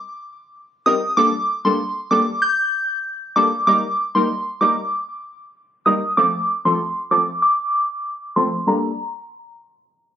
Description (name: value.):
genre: dancehall.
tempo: 96 BPM.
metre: 4/4.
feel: straight.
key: G minor.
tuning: A4 = 440 Hz.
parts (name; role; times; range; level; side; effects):
soft synth bell; melody; 0.9-9.0 s; Bb5 to G6; -18 LUFS; right 1 dB; chorus, ping-pong delay.
synth brass stab; accompaniment; 0.9-8.9 s; F3 to Bb4; -21 LUFS; left 2 dB; chorus.
room: light reverb.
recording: recorded on a phone in the room, studio ambience, low-pass filter.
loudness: -17 LUFS.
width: side -10 dB against mid.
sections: 0.0-8.7 A section; 8.7-10.2 B section.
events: filter sweep 0.0-8.7.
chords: 0.0 Cm7; 1.2 Gmadd9; 3.7 Eb; 6.2 F; 8.7 Gmadd9.